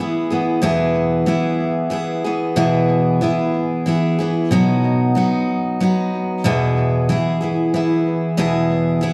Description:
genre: country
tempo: 93 BPM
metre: 3/4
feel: straight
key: E major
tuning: A4 = 441 Hz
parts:
  - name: picked steel-string acoustic guitar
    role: solo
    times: 0.0-9.1 s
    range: E2 to G#4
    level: -18 LUFS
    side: equal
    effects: tape echo
room: wet recital hall reverb, RT60 1.7 s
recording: dark, warm production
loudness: -18 LUFS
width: mono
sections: 0.0-9.1 A section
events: none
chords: 0.0 E; 4.5 B; 6.4 E

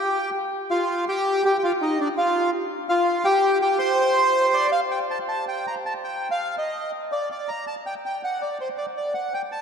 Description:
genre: tango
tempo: 164 BPM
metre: 3/4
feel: rubato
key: G minor from 4.9 s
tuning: A4 = 439 Hz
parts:
  - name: bandoneon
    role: solo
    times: 0.0-9.6 s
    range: D4 to C6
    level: -21 LUFS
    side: equal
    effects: none
room: wet cathedral reverb, RT60 5.0 s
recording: in a vast, echoing space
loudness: -21 LUFS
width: side -6 dB against mid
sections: 0.0-4.9 A section; 4.9-9.6 B section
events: none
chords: 0.0 N.C.; 0.5 Fsus2; 1.6 Dm; 2.7 Fsus2; 3.8 N.C.

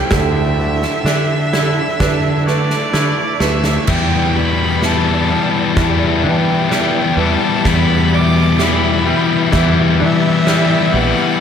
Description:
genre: post-rock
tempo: 64 BPM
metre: 4/4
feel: straight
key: E minor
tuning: A4 = 440 Hz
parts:
  - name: rich violin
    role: melody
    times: 0.0-11.4 s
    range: D5 to D6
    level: -21 LUFS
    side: right 3 dB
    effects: diffuse ambient delay
  - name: dark studio string section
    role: sustained chords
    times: 0.0-11.4 s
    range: D3 to E5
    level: -27 LUFS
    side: right 2 dB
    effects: none
  - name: felt-muted upright piano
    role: arpeggios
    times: 0.0-11.4 s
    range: A4 to E5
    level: -28 LUFS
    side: right 6 dB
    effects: diffuse ambient delay
  - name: twangy electric guitar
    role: arpeggios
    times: 0.0-11.4 s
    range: E2 to E4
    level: -23 LUFS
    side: equal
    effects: diffuse ambient delay
  - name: fuzz fingered electric bass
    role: bass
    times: 0.1-11.1 s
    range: A#1 to E3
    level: -18 LUFS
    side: right 1 dB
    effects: overdrive
  - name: big rock drum kit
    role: drums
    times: 0.1-10.7 s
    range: crash cymbal, kick drum, snare drum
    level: -21 LUFS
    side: right 2 dB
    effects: none
  - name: thick fuzz guitar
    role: riff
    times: 3.9-11.4 s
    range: E3 to E4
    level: -15 LUFS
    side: left 7 dB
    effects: distortion
room: moderate huge ambient reverb, RT60 8.1 s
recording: dreamy mix soaked in reverb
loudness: -12 LUFS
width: side -8 dB against mid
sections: 0.0-3.9 A section; 3.9-11.4 B section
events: drum fill 2.9-3.9, 3.9-11.4; build-up 3.9-11.4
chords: 0.1 Dsus2; 3.9 Em7

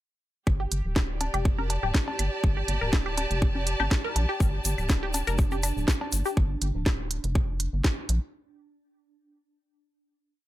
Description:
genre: minimal techno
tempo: 122 BPM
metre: 4/4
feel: swing 54% on 16ths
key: unclear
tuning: A4 = 440 Hz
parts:
  - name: rubbery square bass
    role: bass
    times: 0.5-8.2 s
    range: D1 to Bb1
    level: -29 LUFS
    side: equal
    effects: sidechain pumping
  - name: electronic kick drum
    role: drums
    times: 0.5-8.0 s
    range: none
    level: -25 LUFS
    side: equal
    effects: none
  - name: woodblock, cowbell and bongos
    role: percussion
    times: 0.5-6.1 s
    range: none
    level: -34 LUFS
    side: left 2 dB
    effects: dub echo
  - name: rich studio string section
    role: texture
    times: 0.5-6.4 s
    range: G4 to A5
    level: -34 LUFS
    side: right 1 dB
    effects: sidechain pumping
  - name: resonant blip pluck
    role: riff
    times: 0.6-6.3 s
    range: G4 to Bb4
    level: -33 LUFS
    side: left 2 dB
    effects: phaser, sidechain pumping, dub echo
  - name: garage drum kit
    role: drums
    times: 0.7-8.2 s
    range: hi-hat, snare drum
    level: -30 LUFS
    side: right 1 dB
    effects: none
  - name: tube shaker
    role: percussion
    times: 4.4-6.3 s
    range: none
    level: -36 LUFS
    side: left 5 dB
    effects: none
  - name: swarming drone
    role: texture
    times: 4.9-6.4 s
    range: D4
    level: -42 LUFS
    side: right 7 dB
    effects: built-in reverb, sidechain pumping
room: little or no reverb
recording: none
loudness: -24 LUFS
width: side -15 dB against mid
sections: 0.5-8.3 groove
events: none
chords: 0.5 G5

